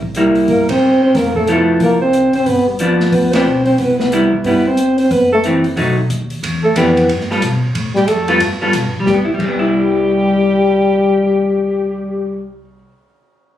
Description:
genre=jazz, small-group swing and bop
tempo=182 BPM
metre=4/4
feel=swing 62% on 8ths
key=C major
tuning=A4 = 440 Hz
part: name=upright bass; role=bass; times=0.0-12.7 s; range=F1 to B2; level=-23 LUFS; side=equal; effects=none
part: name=open jazz drum kit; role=drums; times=0.0-9.5 s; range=crash cymbal, hi-hat, kick drum, ride cymbal, snare drum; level=-25 LUFS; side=equal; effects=none
part: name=vintage hollow-body jazz guitar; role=accompaniment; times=0.2-12.9 s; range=E3 to A4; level=-15 LUFS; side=equal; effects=none
part: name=mellow trombone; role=melody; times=0.5-12.5 s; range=G3 to C4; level=-14 LUFS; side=left 2 dB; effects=none
part: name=breathy alto saxophone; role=second line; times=0.5-12.5 s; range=G4 to C5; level=-19 LUFS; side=right 4 dB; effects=none
room=light reverb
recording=recorded on a phone in the room, club reverb, compression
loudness=-12 LUFS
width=side -11 dB against mid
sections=0.0-6.4 A section; 6.4-9.1 B section; 9.1-11.7 C section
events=band accent 0.7, 3.3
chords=0.0 C7; 1.1 Fmaj7#11; 2.5 G7; 3.8 Cmaj7; 5.1 F#m7b5; 5.8 B7; 6.4 Em7; 7.1 G9; 7.8 Fadd9; 9.1 Cmaj7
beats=0.16 0.49 0.82 | 1.15 1.48 1.81 2.14 | 2.47 2.80 3.13 3.46 | 3.79 4.12 4.45 4.78 | 5.11 5.44 5.77 6.10 | 6.43 6.76 7.09 7.42 | 7.75 8.08 8.41 8.74 | 9.07 9.40 9.72 10.05 | 10.38 10.71 11.04 11.37

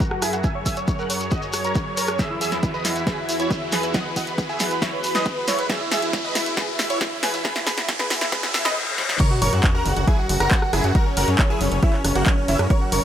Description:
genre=uplifting trance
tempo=137 BPM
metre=4/4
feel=straight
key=F# mixolydian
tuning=A4 = 445 Hz
part: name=big supersaw lead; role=melody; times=0.0-13.0 s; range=A#3 to G#5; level=-24 LUFS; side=right 1 dB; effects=phaser, sidechain pumping, low-pass filter, dub echo
part: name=lush unison pad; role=sustained chords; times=0.0-13.0 s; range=E2 to A#4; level=-31 LUFS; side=equal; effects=chorus, sidechain pumping
part: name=electronic kick drum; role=drums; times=0.0-12.8 s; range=none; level=-21 LUFS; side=equal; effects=none
part: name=punchy analog drum machine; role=drums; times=0.0-13.0 s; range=crash cymbal, handclaps, hi-hat, rim click, snare drum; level=-26 LUFS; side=equal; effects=none
part: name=shekere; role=percussion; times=0.0-8.7 s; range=none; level=-32 LUFS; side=equal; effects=none
part: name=riser, reverse cymbal and sub drop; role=sound effects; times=0.0-11.0 s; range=none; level=-30 LUFS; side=left 1 dB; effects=none
part: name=warm concert grand piano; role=second line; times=9.2-13.0 s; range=C#5 to C#6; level=-30 LUFS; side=equal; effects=sidechain pumping, dub echo
part: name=gritty driven synth bass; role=bass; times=9.4-13.0 s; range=F#1 to F#2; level=-22 LUFS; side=equal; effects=sidechain pumping
room=light reverb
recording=high-pass filter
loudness=-19 LUFS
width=side -10 dB against mid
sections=0.0-9.2 A section; 9.2-13.0 B section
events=build-up 0.0-9.2; riser 0.0-9.2; filter sweep 0.0-9.2; drum fill 2.2-8.8, 9.0; reverse cymbal 8.3-9.2; drop 9.2-13.0; impact 9.2-11.0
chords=0.0 F#add9; 2.2 Eadd9; 9.2 F#add9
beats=0.00 | 0.44 0.88 1.32 1.75 | 2.19 2.63 3.07 3.51 | 3.94 4.38 4.82 5.26 | 5.70 6.13 6.57 7.01 | 7.45 7.89 8.32 8.76 | 9.20 9.64 10.08 10.51 | 10.95 11.39 11.83 12.27 | 12.70

